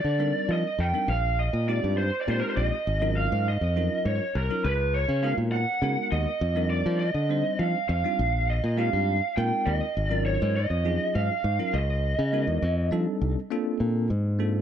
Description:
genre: electric jazz fusion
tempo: 68 BPM (dotted quarters)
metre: 6/8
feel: straight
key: unclear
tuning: A4 = 436 Hz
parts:
  - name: lead guitar through a small cranked amp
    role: melody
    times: 0.0-12.9 s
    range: Bb4 to G5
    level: -28 LUFS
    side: right 2 dB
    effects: overdrive, slapback echo
  - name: modern bright fingered electric bass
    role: bass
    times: 0.0-14.6 s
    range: Ab1 to F3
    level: -26 LUFS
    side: equal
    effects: none
  - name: bell-like tine electric piano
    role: accompaniment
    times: 0.2-14.6 s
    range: Gb3 to C5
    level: -32 LUFS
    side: equal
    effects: fast stereo tremolo
room: light reverb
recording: dark, warm production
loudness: -23 LUFS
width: side -9 dB against mid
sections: 0.0-13.5 A section; 13.5-14.6 B section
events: fingered electric bass solo 13.5-14.6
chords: 0.0 F13sus4; 1.1 Bb13sus4; 2.9 Ab13sus4; 4.6 Db13sus4; 6.4 F13sus4; 8.2 Bb13sus4; 10.0 Ab13sus4; 11.7 Db13sus4; 12.6 F13; 13.5 Bbmaj9

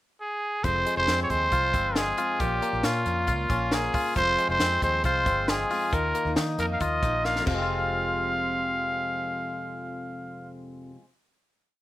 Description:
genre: jangly indie pop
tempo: 136 BPM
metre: 4/4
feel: straight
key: F minor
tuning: A4 = 441 Hz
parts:
  - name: growling trumpet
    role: melody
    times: 0.2-10.5 s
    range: F4 to F5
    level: -26 LUFS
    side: equal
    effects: slapback echo
  - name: picked steel-string acoustic guitar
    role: accompaniment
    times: 0.6-11.0 s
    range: F2 to F4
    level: -40 LUFS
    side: right 6 dB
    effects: none
  - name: direct-recorded clean electric guitar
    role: arpeggios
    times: 0.6-11.1 s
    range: F2 to F4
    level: -30 LUFS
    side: left 3 dB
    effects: slapback echo
  - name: vintage muted fingered electric bass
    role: bass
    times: 0.6-10.5 s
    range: F1 to Eb3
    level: -32 LUFS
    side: right 1 dB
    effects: none
  - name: compact cocktail drum kit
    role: drums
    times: 0.6-7.6 s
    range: crash cymbal, hi-hat, kick drum, snare drum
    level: -30 LUFS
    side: equal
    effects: none
room: little or no reverb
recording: rough home demo mix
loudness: -23 LUFS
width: side -15 dB against mid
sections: 0.0-0.6 pickup bar; 0.6-7.7 verse; 7.7-11.2 final hit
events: drum fill 7.3-7.7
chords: 0.0 N.C.; 0.6 Fm; 2.4 Bbm; 4.2 Fm; 5.9 Ebsus2; 7.5 Fm

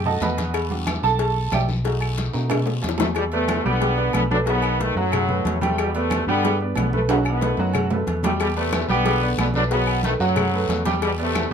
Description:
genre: latin, salsa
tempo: 183 BPM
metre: 4/4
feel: straight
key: E minor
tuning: A4 = 440 Hz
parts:
  - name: clear upright piano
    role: accompaniment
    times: 0.0-11.5 s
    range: F#3 to B5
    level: -25 LUFS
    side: right 4 dB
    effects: none
  - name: fingered electric bass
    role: bass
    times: 0.0-11.5 s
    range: B1 to B2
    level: -25 LUFS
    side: left 1 dB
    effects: none
  - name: congas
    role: percussion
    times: 0.1-11.5 s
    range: none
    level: -30 LUFS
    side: equal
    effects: none
  - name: cowbell and bongos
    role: percussion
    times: 0.2-11.5 s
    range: none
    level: -28 LUFS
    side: left 6 dB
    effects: none
  - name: guiro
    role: percussion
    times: 0.2-3.2, 8.4-11.5 s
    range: none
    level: -36 LUFS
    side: left 6 dB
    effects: none
  - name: timbales and agogo bells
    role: percussion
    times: 0.2-11.5 s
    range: none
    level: -30 LUFS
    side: right 5 dB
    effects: none
  - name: claves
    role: percussion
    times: 0.5-11.5 s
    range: none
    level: -33 LUFS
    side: left 8 dB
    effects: none
  - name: bright trombone section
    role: melody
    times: 3.0-11.5 s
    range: A2 to D4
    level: -24 LUFS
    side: left 1 dB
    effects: none
room: moderate studio ambience, RT60 0.5 s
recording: minimal, uncompressed stereo recording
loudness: -19 LUFS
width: side -7 dB against mid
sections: 0.0-3.2 A section; 3.2-11.5 B section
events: upright piano solo 0.0-3.2; drum fill 2.3-3.2, 7.1-8.4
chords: 0.0 B7; 0.5 Em7; 1.9 B7; 3.2 Em7; 4.5 B7; 5.8 Em7; 7.1 B7; 8.4 Em7; 9.7 B7; 11.0 Em7

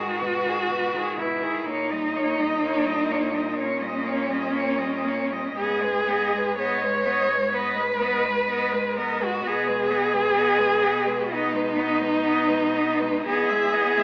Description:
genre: classical, lyrical piece for cello ensemble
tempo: 62 BPM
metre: 4/4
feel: uneven beats, rubato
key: G# minor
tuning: A4 = 439 Hz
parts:
  - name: warm cello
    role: melody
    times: 0.0-14.0 s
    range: G#4 to E5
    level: -28 LUFS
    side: equal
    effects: none
  - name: warm cello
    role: second line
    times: 0.0-14.0 s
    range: C#4 to C#5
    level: -22 LUFS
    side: equal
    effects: none
  - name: clear cello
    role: accompaniment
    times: 0.0-14.0 s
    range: B2 to B3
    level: -31 LUFS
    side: equal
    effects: none
  - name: dark cello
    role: bass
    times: 0.0-14.0 s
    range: E2 to B2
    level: -34 LUFS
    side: equal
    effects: none
room: wet recital hall reverb, RT60 1.9 s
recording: AM radio sound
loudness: -21 LUFS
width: side -31 dB against mid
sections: 0.0-14.0 A section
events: none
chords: 0.0 G#m; 1.7 D#7/A#; 5.6 G#m; 9.5 G#m/B; 13.3 Emaj7

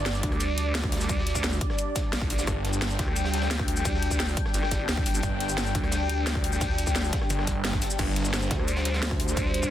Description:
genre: dark technical drum and bass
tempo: 174 BPM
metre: 4/4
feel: straight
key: unclear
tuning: A4 = 438 Hz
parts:
  - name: dark analog pad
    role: sustained chords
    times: 0.0-9.7 s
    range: G3 to G5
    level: -31 LUFS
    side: left 1 dB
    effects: chorus, sidechain pumping
  - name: snarling distorted saw bass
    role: bass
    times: 0.0-0.2, 2.5-3.0, 5.2-8.5 s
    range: G1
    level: -29 LUFS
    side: equal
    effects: distortion, tube saturation, sidechain pumping
  - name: crunchy breakbeat drum kit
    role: drums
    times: 0.1-9.7 s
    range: hi-hat, snare drum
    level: -39 LUFS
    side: equal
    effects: none
  - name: drum and bass drum kit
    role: drums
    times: 0.1-9.7 s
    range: crash cymbal, hi-hat, rim click, shaker, snare drum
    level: -31 LUFS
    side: equal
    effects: overdrive
  - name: vowel-sweep wobble bass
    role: bass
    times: 0.2-9.7 s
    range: G1 to D2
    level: -28 LUFS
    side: equal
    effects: chorus, tube saturation
  - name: electronic kick drum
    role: drums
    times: 0.2-9.7 s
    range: none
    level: -30 LUFS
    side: equal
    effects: none
room: light reverb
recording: dense, heavily limited modern master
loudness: -24 LUFS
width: side -12 dB against mid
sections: 0.0-9.7 A section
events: none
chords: 0.0 G5

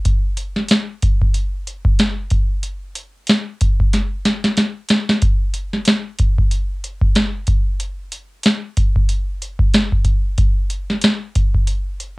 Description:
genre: hip hop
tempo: 93 BPM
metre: 4/4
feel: swing 58% on 16ths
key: none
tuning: none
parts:
  - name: booming analog drum machine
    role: drums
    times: 0.1-12.2 s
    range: hi-hat, kick drum, snare drum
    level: -16 LUFS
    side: equal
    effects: none
room: light reverb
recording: home recording on cassette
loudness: -16 LUFS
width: side -25 dB against mid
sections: 0.0-5.2 A section; 5.2-12.2 B section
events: drum fill 3.9-5.2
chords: none

